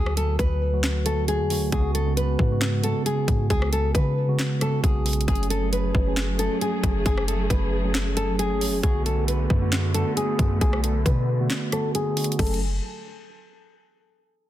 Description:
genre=hip hop, trap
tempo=135 BPM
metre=4/4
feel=half-time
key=F# minor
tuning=A4 = 440 Hz
part: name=nylon-string guitar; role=melody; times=0.0-12.6 s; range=G#4 to B4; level=-28 LUFS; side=left 3 dB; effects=low-pass filter, ping-pong delay
part: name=mellow tine electric piano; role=accompaniment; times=0.0-12.6 s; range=C#3 to G#4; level=-28 LUFS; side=right 5 dB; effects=phaser, low-pass filter
part: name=warm 808-style bass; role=bass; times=0.0-12.8 s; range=F#1 to C#3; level=-25 LUFS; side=equal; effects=none
part: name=trap drum kit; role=drums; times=0.1-12.6 s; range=crash cymbal, handclaps, hi-hat, kick drum, rim click, snare drum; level=-26 LUFS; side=equal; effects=overdrive
part: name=dark symphonic string section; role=sustained chords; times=5.3-12.6 s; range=D3 to G#4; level=-34 LUFS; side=left 2 dB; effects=low-pass filter
room=little or no reverb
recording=dense, heavily limited modern master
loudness=-21 LUFS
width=side -13 dB against mid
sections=0.0-5.3 A section; 5.3-12.4 B section; 12.4-14.2 C section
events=filter sweep 5.3-12.4; break 11.5-12.4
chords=0.0 D; 1.7 C#7sus4; 5.3 F#madd9; 8.8 Bm7; 12.4 F#madd9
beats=0.39 0.83 1.28 | 1.72 2.17 2.61 3.06 | 3.50 3.95 4.39 4.83 | 5.28 5.72 6.17 6.61 | 7.06 7.50 7.95 8.39 | 8.84 9.28 9.72 10.17 | 10.61 11.06 11.50 11.95 | 12.39

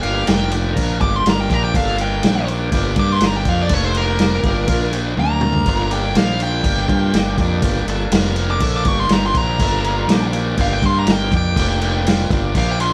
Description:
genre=blues rock power trio and southern rock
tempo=122 BPM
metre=4/4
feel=straight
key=G minor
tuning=A4 = 442 Hz
part: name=smooth overdriven lead guitar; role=second line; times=0.0-12.9 s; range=Bb4 to D6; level=-24 LUFS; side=equal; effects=none
part: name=tonewheel organ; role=sustained chords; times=0.0-12.9 s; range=Bb3 to Bb4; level=-27 LUFS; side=equal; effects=overdrive, slow rotary speaker
part: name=fuzz fingered electric bass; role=bass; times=0.0-12.9 s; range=F1 to G2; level=-22 LUFS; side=equal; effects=overdrive
part: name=vintage drum kit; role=drums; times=0.0-12.9 s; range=crash cymbal, kick drum, snare drum, toms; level=-21 LUFS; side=equal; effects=none
room=light reverb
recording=band playing live in one room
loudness=-17 LUFS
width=mono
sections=0.0-12.9 A section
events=lead electric guitar solo 0.0-12.9; drum fill 5.2-5.7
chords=0.0 Gm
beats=0.28 0.77 1.26 | 1.75 2.24 2.73 3.22 | 3.71 4.20 4.69 5.18 | 5.67 6.16 6.65 7.14 | 7.63 8.13 8.62 9.11 | 9.60 10.09 10.58 11.07 | 11.57 12.06 12.55

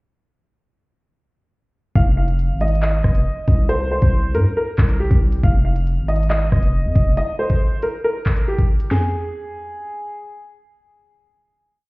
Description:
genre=hip hop, drill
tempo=138 BPM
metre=4/4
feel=half-time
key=F minor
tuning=A4 = 440 Hz
part: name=warm upright piano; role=melody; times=2.0-10.2 s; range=G4 to F5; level=-24 LUFS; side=equal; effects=ping-pong delay
part: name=distorted 808-style bass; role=bass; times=2.0-7.2 s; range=F1 to G2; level=-18 LUFS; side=equal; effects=distortion
part: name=drill drum kit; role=drums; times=2.0-9.0 s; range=handclaps, hi-hat, kick drum, rim click, snare drum, toms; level=-17 LUFS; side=equal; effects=none
room=little or no reverb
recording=heard muffled through a wall, stone room reverb, EQ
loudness=-16 LUFS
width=side -24 dB against mid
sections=2.0-8.9 verse; 8.9-11.9 final note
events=none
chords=2.0 Fm7; 3.7 C5; 5.4 Fm7; 7.2 N.C.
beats=| 1.96 2.39 2.83 3.26 | 3.69 4.13 4.56 5.00 | 5.43 5.87 6.30 6.74 | 7.17 7.61 8.04 8.48 | 8.91 9.35 9.78

